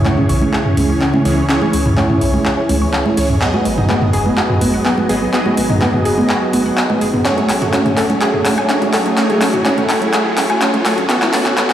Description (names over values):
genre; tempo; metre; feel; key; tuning
progressive house; 125 BPM; 4/4; straight; C# minor; A4 = 442 Hz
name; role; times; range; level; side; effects
lush unison pad; sustained chords; 0.0-11.7 s; C#3 to B4; -21 LUFS; left 1 dB; chorus
supersaw stab; stabs; 0.0-11.7 s; E3 to D#5; -20 LUFS; right 1 dB; phaser, dub echo
riser; sound effects; 2.7-11.7 s; none; -26 LUFS; equal; none
wide unison pluck; arpeggios; 0.1-11.7 s; B3 to C#6; -20 LUFS; equal; dub echo
big-room dance drum kit; drums; 0.1-11.7 s; handclaps, hi-hat, woodblock; -20 LUFS; left 1 dB; none
electronic congas and toms; percussion; 0.1-11.7 s; none; -19 LUFS; right 1 dB; overdrive
saturated sub bass; bass; 0.3-11.5 s; F#1 to C#2; -22 LUFS; left 1 dB; tube saturation
room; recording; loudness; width
moderate huge ambient reverb, RT60 7.2 s; played on a big sound system in a bare room, large studio reverb, high-pass filter; -12 LUFS; side -11 dB against mid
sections
0.0-11.7 A section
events
build-up 0.0-11.7; drum fill 0.0-11.7; filter sweep on synth pluck 0.0-11.7; filter sweep on analog synth pad 0.0-11.7; filter sweep 0.0-11.7; riser 2.7-11.7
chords
0.0 C#m; 3.4 G#m7; 7.3 F#madd9/A; 11.1 Aadd9